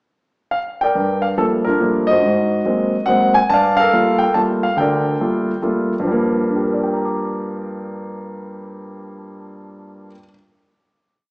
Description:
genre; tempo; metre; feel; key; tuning
jazz; 141 BPM; 3/4; swing 66% on 8ths; G minor; A4 = 440 Hz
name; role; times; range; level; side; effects
warm grand piano; solo; 0.5-10.3 s; D2 to D6; -16 LUFS; equal; none
room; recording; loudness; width
wet large studio reverb, RT60 1.2 s; band playing live in one room, small speaker sound; -15 LUFS; side -28 dB against mid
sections
0.0-0.9 pickup bar; 0.9-6.1 A section; 6.1-8.6 final chord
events
none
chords
0.0 Bb6; 0.9 Gm9; 2.2 Ab9; 3.5 Gm9; 6.1 Gm7

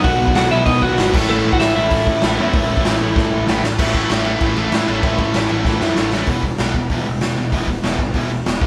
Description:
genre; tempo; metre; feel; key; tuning
punk rock; 192 BPM; 4/4; straight; unclear; A4 = 439 Hz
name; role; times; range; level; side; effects
lightly driven lead guitar; melody; 0.0-3.4 s; A3 to F#5; -21 LUFS; equal; none
overdriven electric guitar; riff; 0.0-6.3 s; A2 to E4; -24 LUFS; equal; none
sludgy distorted guitar; riff; 0.0-8.7 s; E2 to B3; -28 LUFS; equal; none
tight distorted guitar; riff; 0.0-8.7 s; E2 to B3; -27 LUFS; equal; distortion
growling picked electric bass; bass; 0.0-8.7 s; E1 to B2; -25 LUFS; equal; overdrive
raw garage drum kit; drums; 0.0-8.7 s; crash cymbal, hi-hat, kick drum, snare drum; -21 LUFS; equal; none
room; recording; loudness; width
moderate studio reverb, RT60 0.5 s; band playing live in one room; -17 LUFS; mono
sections
0.0-3.8 A section; 3.8-6.3 B section; 6.3-8.7 C section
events
drum fill 3.2-3.8, 5.7-6.3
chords
0.0 B; 1.1 A; 6.3 E5

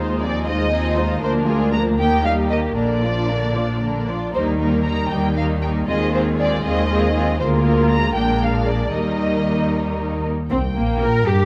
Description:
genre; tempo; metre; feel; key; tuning
quick classical-period movement for string orchestra; 78 BPM (dotted quarters); 6/8; straight; Eb major; A4 = 438 Hz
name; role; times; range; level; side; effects
muted studio violin section; melody; 0.0-11.5 s; Bb4 to Bb5; -27 LUFS; equal; none
muted symphonic violin section; second line; 0.0-11.5 s; Bb3 to D5; -28 LUFS; equal; none
muted studio viola section; accompaniment; 0.0-11.5 s; D3 to Bb4; -25 LUFS; equal; none
muted studio cello section; bass; 0.0-11.5 s; D2 to Bb4; -26 LUFS; equal; none
muted studio double bass section; bass; 0.0-11.5 s; Bb1 to Bb2; -26 LUFS; equal; none
room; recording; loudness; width
moderate scoring stage reverb, RT60 1.6 s; none; -20 LUFS; mono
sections
0.0-10.5 A section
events
none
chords
0.0 Fm7/Eb; 1.2 Bb7/D; 2.0 Eb; 2.8 Bb; 4.3 Eb; 5.9 Fm7/Eb; 7.4 Bb7/D; 8.2 Bb7; 8.9 Eb; 10.5 Fsus4/Bb (rootless)

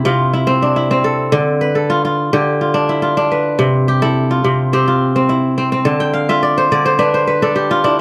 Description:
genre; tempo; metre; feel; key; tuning
west african traditional; 106 BPM; 4/4; straight; C major; A4 = 440 Hz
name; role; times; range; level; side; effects
kora; solo; 0.0-8.0 s; C3 to A5; -15 LUFS; equal; none
room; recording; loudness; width
moderate studio reverb, RT60 0.7 s; none; -15 LUFS; mono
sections
0.0-3.6 A section; 3.6-8.0 B section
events
kora fill 5.9-8.0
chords
0.0 C; 1.3 Dm; 3.6 C; 5.9 Dm

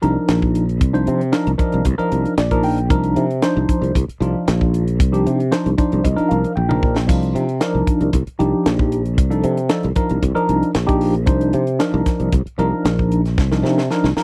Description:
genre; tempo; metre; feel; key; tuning
electric jazz fusion; 115 BPM; 4/4; straight; C minor; A4 = 440 Hz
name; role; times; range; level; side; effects
tine electric piano; accompaniment; 0.0-14.2 s; F3 to G5; -21 LUFS; equal; medium tremolo, phaser
sustaining fretless electric bass; bass; 0.0-14.2 s; Bb1 to C3; -22 LUFS; equal; lush chorus
tight funk drum kit; drums; 0.0-14.2 s; hi-hat, kick drum, snare drum, splash cymbal, toms; -21 LUFS; equal; none
room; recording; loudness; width
little or no reverb; dry, close 1970s-style studio recording; -18 LUFS; mono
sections
0.0-14.2 A section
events
tine electric piano fill 2.1-2.9, 5.5-7.1; drum fill 6.6-7.1, 13.4-14.2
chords
0.0 Cm11

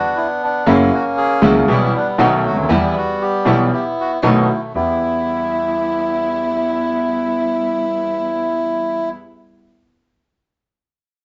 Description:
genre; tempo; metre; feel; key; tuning
tango; 118 BPM; 4/4; rubato; E minor; A4 = 441 Hz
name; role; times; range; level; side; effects
bandoneon; melody; 0.0-9.1 s; F#3 to A4; -21 LUFS; equal; none
warm concert grand piano; accompaniment; 0.7-9.1 s; B1 to G4; -20 LUFS; equal; none
dark chamber string section; stabs; 0.7-9.1 s; F#3 to E4; -25 LUFS; equal; none
upright bass; bass; 0.7-5.0 s; F#1 to E2; -27 LUFS; equal; none
room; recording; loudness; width
moderate studio reverb, RT60 0.9 s; nothing above 7.7 kHz; -17 LUFS; mono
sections
0.0-4.7 A section; 4.7-8.8 B section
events
none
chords
0.0 E7(no3) (rootless); 0.7 F#7; 1.7 Em/B; 2.2 B7; 2.7 Em; 4.2 B7; 4.7 Em

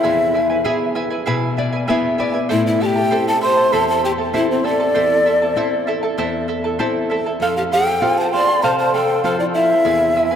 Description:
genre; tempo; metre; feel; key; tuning
andean folk, Andean ensemble; 98 BPM; 4/4; straight; A minor; A4 = 440 Hz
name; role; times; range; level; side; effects
breathy large quena; melody; 0.0-10.4 s; C5 to C6; -18 LUFS; equal; tape echo
breathy pan flute; second line; 0.0-10.4 s; C4 to D5; -22 LUFS; left 2 dB; none
charango; accompaniment; 0.0-10.4 s; E4 to A5; -22 LUFS; right 4 dB; none
nylon-string guitar; accompaniment; 0.0-10.4 s; E2 to E5; -23 LUFS; left 3 dB; none
room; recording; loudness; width
wet cathedral reverb, RT60 5.3 s; in a vast, echoing space; -15 LUFS; side -8 dB against mid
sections
0.0-10.4 A section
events
nylon-string guitar fill 1.3-2.5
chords
0.0 E; 2.5 Am; 7.4 F; 9.8 E

